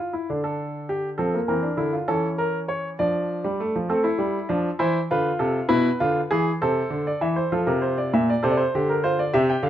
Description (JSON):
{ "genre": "classical, baroque-style 3-part fugue for grand piano", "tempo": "66 BPM (dotted quarters)", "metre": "6/8", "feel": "straight", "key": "D minor", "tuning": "A4 = 440 Hz", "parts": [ { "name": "warm grand piano", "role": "solo", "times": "0.0-9.7 s", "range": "Bb2 to G5", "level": "-21 LUFS", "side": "equal", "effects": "none" } ], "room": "moderate stone room reverb, RT60 1.1 s", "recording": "none", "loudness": "-21 LUFS", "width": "side -11 dB against mid", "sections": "0.3-7.5 A section; 7.5-9.7 B section", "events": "none", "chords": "0.3 D5; 1.2 F; 2.1 A/E; 3.0 Dm/F; 3.9 Am; 4.8 C; 5.7 E7/B; 6.6 Am/C; 7.5 F; 8.4 Am/C", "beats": "| 0.28 1.20 | 2.10 3.00 | 3.90 4.80 | 5.71 6.61 | 7.52 8.43 | 9.34" }